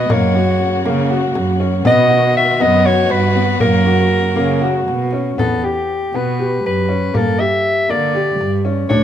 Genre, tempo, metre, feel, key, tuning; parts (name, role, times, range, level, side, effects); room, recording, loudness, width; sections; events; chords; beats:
contemporary instrumental, chamber music in an uneven meter; 239 BPM (eighths); 7/8; straight; E dorian; A4 = 441 Hz
warm soprano saxophone; melody; 0.0-9.0 s; G4 to E5; -17 LUFS; left 1 dB
rich studio string section; sustained chords; 0.0-5.4 s; C#3 to F#4; -24 LUFS; left 2 dB
clear concert grand piano; arpeggios; 0.0-9.0 s; A#3 to G4; -19 LUFS; left 3 dB
dark cello; bass; 0.1-9.0 s; D2 to D3; -18 LUFS; right 4 dB
frame drum; percussion; 0.1-9.0 s; -22 LUFS; left 1 dB
moderate plate reverb, RT60 3.3 s; -13 LUFS; side -10 dB against mid
0.0-5.4 A section; 5.4-9.0 B section
0.1 F#; 1.9 B; 3.6 F#; 5.4 Em; 7.1 Gm
| 0.09 0.35 0.60 0.85 1.10 1.35 1.60 | 1.85 2.10 2.35 2.60 2.85 3.10 3.35 | 3.60 3.86 4.11 4.37 4.62 4.88 5.13 | 5.39 5.64 5.90 6.15 6.40 6.65 6.90 | 7.15 7.40 7.65 7.90 8.15 8.40 8.65 | 8.90